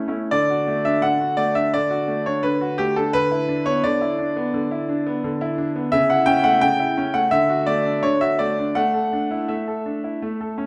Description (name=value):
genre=classical-period piano sonatina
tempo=85 BPM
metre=4/4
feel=rubato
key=D major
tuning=A4 = 440 Hz
part: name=clear grand piano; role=solo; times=0.0-10.7 s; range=C#3 to G5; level=-21 LUFS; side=equal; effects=none
room=wet recital hall reverb, RT60 1.5 s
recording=none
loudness=-21 LUFS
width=mono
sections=0.3-10.7 A section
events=none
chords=0.3 D; 3.1 E5/D; 5.9 A/C#; 7.3 D; 8.8 Asus4